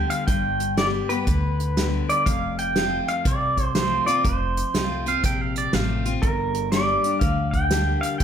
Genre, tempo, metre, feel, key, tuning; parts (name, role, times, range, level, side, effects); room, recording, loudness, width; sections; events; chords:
honky-tonk and classic country; 121 BPM; 4/4; swing 65% on 8ths; F major; A4 = 439 Hz
pedal steel guitar; melody; 0.0-8.2 s; Bb4 to G5; -24 LUFS; right 1 dB
picked steel-string acoustic guitar; accompaniment; 0.0-8.2 s; F2 to G4; -27 LUFS; left 5 dB
unplugged drum kit; drums; 0.1-8.2 s; hi-hat, kick drum, snare drum; -26 LUFS; right 1 dB
upright bass; bass; 0.3-8.2 s; F1 to D2; -27 LUFS; equal
twangy electric guitar; second line; 5.1-6.1 s; D5 to G5; -26 LUFS; right 6 dB
moderate recital hall reverb, RT60 1.4 s; -20 LUFS; side -8 dB against mid
0.0-8.2 A section
0.0 G; 2.3 F; 6.2 Gm